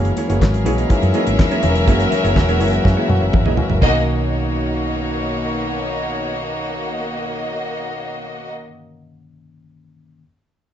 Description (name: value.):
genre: disco.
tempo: 123 BPM.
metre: 4/4.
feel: straight.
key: B major.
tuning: A4 = 442 Hz.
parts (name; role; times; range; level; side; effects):
mellow electric guitar; accompaniment; 0.0-8.7 s; A#3 to D#5; -25 LUFS; right 4 dB; none.
tine electric piano; accompaniment; 0.0-10.2 s; B2 to F#4; -25 LUFS; left 4 dB; none.
rich chamber string section; sustained chords; 0.0-8.5 s; B2 to C#5; -25 LUFS; left 1 dB; none.
hollow-body short-scale fingered electric bass; bass; 0.0-8.7 s; E1 to F#2; -20 LUFS; equal; none.
damped 70s drum kit; drums; 0.0-3.9 s; handclaps, hi-hat, kick drum, snare drum, toms; -18 LUFS; right 1 dB; none.
congas; percussion; 0.2-4.1 s; none; -26 LUFS; left 6 dB; none.
warm studio violin section; second line; 0.9-8.5 s; A#3 to E5; -24 LUFS; left 1 dB; slapback echo.
room: light reverb.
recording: dark, warm production, nothing above 7.9 kHz.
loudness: -16 LUFS.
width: side -10 dB against mid.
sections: 0.0-3.8 A section; 3.8-7.7 B section.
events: drum fill 2.8-3.8.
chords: 0.0 F#9; 3.8 Bmaj9.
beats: 0.41 0.90 1.39 | 1.88 2.36 2.85 3.34 | 3.82 4.31 4.80 5.29 | 5.77 6.26 6.75 7.24.